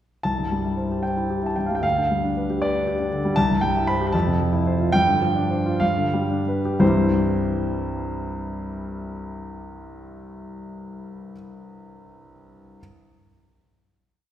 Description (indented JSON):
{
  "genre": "classical, romantic character piece for solo piano",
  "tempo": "57-80 BPM (dotted quarters)",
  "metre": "6/8",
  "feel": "rubato",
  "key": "C major",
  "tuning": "A4 = 438 Hz",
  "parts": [
    { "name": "warm concert grand piano", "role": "solo", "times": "0.2-12.8 s", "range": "C2 to B5", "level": "-21 LUFS", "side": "equal", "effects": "none" }
  ],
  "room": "wet scoring stage reverb, RT60 1.9 s",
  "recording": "heard from further back in the room, faint mains hum",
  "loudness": "-20 LUFS",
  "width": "side -11 dB against mid",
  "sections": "0.2-6.8 A section; 6.8-10.6 final chord",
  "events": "slowing down 2.6-6.8",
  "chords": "0.2 C; 1.8 G7/D; 3.4 C; 4.1 Fmaj7; 4.9 G7sus4; 5.8 G7; 6.8 C"
}